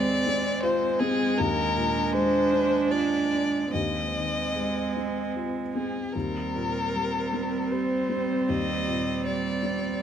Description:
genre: neoclassical piano and strings.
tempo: 76 BPM.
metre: 3/4.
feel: uneven beats, rubato.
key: Eb major.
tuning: A4 = 436 Hz.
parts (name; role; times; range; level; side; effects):
dark violin; melody; 0.0-10.0 s; Ab4 to Eb5; -28 LUFS; left 3 dB; none.
warm cello; second line; 0.0-10.0 s; G3 to Ab3; -32 LUFS; right 8 dB; none.
felt-muted upright piano; accompaniment; 0.0-10.0 s; Eb2 to G4; -30 LUFS; left 3 dB; none.
warm viola; accompaniment; 0.0-10.0 s; C4 to D4; -30 LUFS; right 5 dB; none.
room: moderate recital hall reverb, RT60 1.5 s.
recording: close, detailed microphones.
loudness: -24 LUFS.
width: side -8 dB against mid.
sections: 0.0-10.0 A section.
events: none.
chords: 0.0 Fm7/Eb; 1.4 Bb7/Eb; 3.7 Ab6/Eb; 6.1 Eb6.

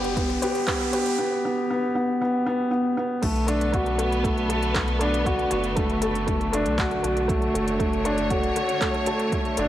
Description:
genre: piano and strings electronica.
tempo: 118 BPM.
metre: 4/4.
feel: straight.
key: unclear.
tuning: A4 = 440 Hz.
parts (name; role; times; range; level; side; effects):
clear symphonic string section; sustained chords; 0.0-9.7 s; D3 to C#5; -30 LUFS; equal; sidechain pumping.
soft round pluck; arpeggios; 0.0-9.7 s; A4 to B4; -33 LUFS; equal; chorus, sidechain pumping, tape echo.
felt-muted upright piano; riff; 0.0-9.7 s; A3 to B4; -24 LUFS; equal; tape echo.
round analog bass; bass; 0.0-9.7 s; F#1 to B1; -30 LUFS; equal; sidechain pumping.
organic electronic drum kit; drums; 0.0-9.7 s; crash cymbal, handclaps, hi-hat; -32 LUFS; equal; high-pass filter on hats, high-pass filter on snare, high-pass filter on cymbals, high-pass filter on room.
riser; sound effects; 0.0-1.2 s; none; -33 LUFS; equal; none.
electronic kick drum; drums; 0.2-9.4 s; none; -29 LUFS; equal; overdrive.
room: moderate scoring stage reverb, RT60 1.6 s.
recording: none.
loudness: -21 LUFS.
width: side -12 dB against mid.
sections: 0.0-3.2 A section; 3.2-9.7 B section.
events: build-up 0.0-3.2; riser 0.0-1.2; drop 3.2-9.7.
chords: 0.0 G; 3.2 Bm7.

